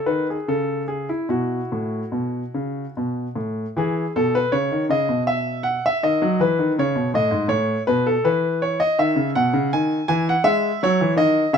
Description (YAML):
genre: classical, baroque-style suite movement for grand piano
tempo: 71-83 BPM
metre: 3/4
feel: rubato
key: E major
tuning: A4 = 440 Hz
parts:
  - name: clear grand piano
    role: solo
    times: 0.0-11.6 s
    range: G#2 to G#5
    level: -19 LUFS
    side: equal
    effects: none
room: moderate stone room reverb, RT60 1.2 s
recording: none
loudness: -19 LUFS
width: side -7 dB against mid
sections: 0.0-3.8 A section; 3.8-11.6 B section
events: none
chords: 0.0 F#m; 1.3 Bsus4; 3.0 B5; 3.8 E5; 6.0 B7; 8.2 E5; 10.4 E